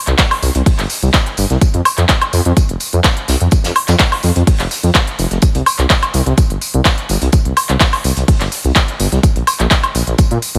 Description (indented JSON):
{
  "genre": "progressive house",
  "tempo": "126 BPM",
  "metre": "4/4",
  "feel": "straight",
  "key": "unclear",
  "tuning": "A4 = 440 Hz",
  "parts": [
    { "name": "dark detuned saw bass", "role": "bass", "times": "0.1-10.6 s", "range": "F1 to Bb2", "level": "-16 LUFS", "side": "equal", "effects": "sidechain pumping" },
    { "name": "big-room dance drum kit", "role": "drums", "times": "0.1-10.6 s", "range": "handclaps, hi-hat, woodblock", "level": "-18 LUFS", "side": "equal", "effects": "overdrive, sidechain pumping on hats, sidechain pumping on perc" },
    { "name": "electronic kick drum", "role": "drums", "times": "0.2-10.3 s", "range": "none", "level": "-15 LUFS", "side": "equal", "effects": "none" },
    { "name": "soft-mallet drum kit", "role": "drums", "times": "0.2-10.5 s", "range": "hi-hat, snare drum, tambourine", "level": "-28 LUFS", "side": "equal", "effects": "sidechain pumping on hats, high-pass filter on hats, high-pass filter on snare, sidechain pumping on perc, high-pass filter on perc, high-pass filter on room" }
  ],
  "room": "little or no reverb",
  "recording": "none",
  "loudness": "-14 LUFS",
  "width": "mono",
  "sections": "0.0-10.6 A section",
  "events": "none",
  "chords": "none",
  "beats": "0.19 0.66 1.14 | 1.61 2.09 2.57 3.04 | 3.52 4.00 4.47 4.95 | 5.42 5.90 6.38 6.85 | 7.33 7.80 8.28 8.76 | 9.23 9.71 10.19"
}